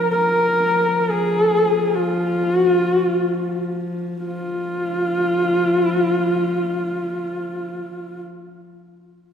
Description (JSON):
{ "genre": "mongolian traditional, Mongolian folk", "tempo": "free time", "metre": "none", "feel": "none", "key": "F yu mode", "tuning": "A4 = 440 Hz", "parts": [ { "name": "dark horsehead fiddle", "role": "melody", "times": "0.0-8.2 s", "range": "F4 to Bb4", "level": "-19 LUFS", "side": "equal", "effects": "none" }, { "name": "dark horsehead fiddle", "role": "drone", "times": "0.0-8.2 s", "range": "F3", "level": "-26 LUFS", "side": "left 2 dB", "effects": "none" } ], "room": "wet church reverb, RT60 2.6 s", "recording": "recorded in a church or concert hall", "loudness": "-18 LUFS", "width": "side -8 dB against mid", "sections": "0.0-4.2 A section; 4.2-8.0 B section", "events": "slowing down 0.0-4.2", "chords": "none" }